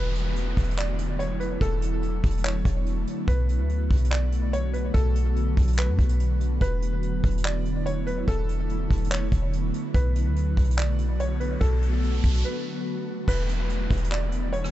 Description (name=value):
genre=hip hop, atmospheric cloud-rap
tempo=144 BPM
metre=4/4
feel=half-time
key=unclear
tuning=A4 = 440 Hz
part: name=felt-muted upright piano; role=melody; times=0.0-14.7 s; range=A4 to D5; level=-34 LUFS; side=equal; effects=digital delay
part: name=ethereal airy pad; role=sustained chords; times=0.0-14.7 s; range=D3 to F#4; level=-31 LUFS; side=equal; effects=ensemble chorus, built-in reverb, sidechain pumping
part: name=clean 808-style bass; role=bass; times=0.0-14.7 s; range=E1 to F#2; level=-25 LUFS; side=equal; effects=none
part: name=downlifter and riser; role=sound effects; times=0.0-3.3, 11.1-14.7 s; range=none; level=-39 LUFS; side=equal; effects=none
part: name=vintage brush drum kit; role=drums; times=0.2-14.7 s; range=crash cymbal, handclaps, hi-hat, kick drum, rim click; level=-26 LUFS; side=equal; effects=none
room=small room ambience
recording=nothing above 8.0 kHz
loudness=-22 LUFS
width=side -14 dB against mid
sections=0.0-13.3 A section; 13.3-14.7 B section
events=riser 11.1-13.3; break 12.4-13.3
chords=0.0 E9sus4; 3.3 Bm7; 6.6 E9sus4; 9.9 Bm7; 13.3 E9sus4